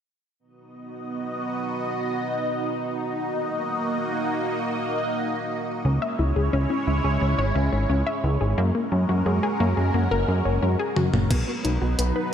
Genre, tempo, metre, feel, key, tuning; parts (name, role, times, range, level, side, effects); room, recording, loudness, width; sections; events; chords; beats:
synthwave; 88 BPM; 4/4; straight; A4 = 440 Hz
lush unison pad; sustained chords; 0.8-12.3 s; F#3 to D#5; -26 LUFS; right 1 dB; chorus, phaser, sidechain pumping
wide unison pluck; arpeggios; 5.8-12.2 s; A#3 to E5; -27 LUFS; left 2 dB; cassette tape, digital delay
fat analog bass; bass; 5.8-12.1 s; F#1 to F#2; -22 LUFS; equal; sidechain pumping
gated 80s digital drum machine; drums; 11.0-12.1 s; crash cymbal, hi-hat, toms; -28 LUFS; left 2 dB; gated reverb, overdrive
electronic kick drum; drums; 11.3-11.4 s; -24 LUFS; equal; overdrive
moderate plate reverb, RT60 2.2 s; bright 1980s-style digital production; -22 LUFS; side -8 dB against mid
0.4-11.3 A section; 11.3-12.3 B section
drum fill 11.0-11.3
0.4 B; 3.1 D#m; 5.9 C#m; 8.6 F#add9; 11.3 B
| 0.40 1.08 1.76 2.44 | 3.12 3.81 4.49 5.17 | 5.85 6.53 7.21 7.90 | 8.58 9.26 9.94 10.62 | 11.30 11.99